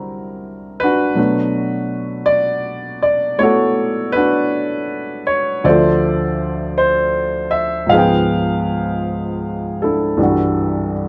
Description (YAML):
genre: jazz ballad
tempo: 53 BPM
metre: 4/4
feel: swing 68% on 8ths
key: unclear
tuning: A4 = 440 Hz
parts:
  - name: warm baby grand piano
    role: solo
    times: 0.0-11.1 s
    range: C2 to G5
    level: -18 LUFS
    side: equal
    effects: none
room: light reverb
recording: close, detailed microphones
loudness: -17 LUFS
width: mono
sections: 0.0-11.1 A section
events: none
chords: 0.0 C7#11; 1.2 Bm9; 5.6 Dm7; 7.9 C#7#11; 10.2 Cadd9(#11)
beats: 0.06 | 1.18 2.29 3.40 4.52 | 5.64 6.77 7.90 9.04 | 10.18